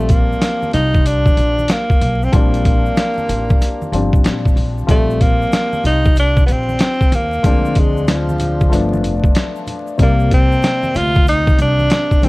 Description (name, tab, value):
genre	hip hop, jazz-hop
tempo	94 BPM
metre	4/4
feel	swing 65% on 16ths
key	Bb major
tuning	A4 = 439 Hz
part	breathy tenor saxophone	melody	0.0-12.3 s	F3 to F4	-18 LUFS	equal	none
part	warm upright piano	accompaniment	0.0-12.3 s	C3 to D5	-22 LUFS	left 4 dB	none
part	upright bass	bass	0.0-12.3 s	F1 to Bb2	-19 LUFS	equal	none
part	boom bap sampler-style drum kit	drums	0.1-12.3 s	hi-hat, kick drum, snare drum	-14 LUFS	equal	none
part	congas and tube shaker	percussion	0.1-12.3 s	none	-30 LUFS	right 2 dB	none
room	little or no reverb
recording	dark, warm production, vinyl crackle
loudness	-12 LUFS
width	side -22 dB against mid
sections	0.0-4.9 A section; 4.9-12.3 A section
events	none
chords	0.0 Bb6; 7.4 Dm7b5; 8.7 G7; 10.0 C7sus2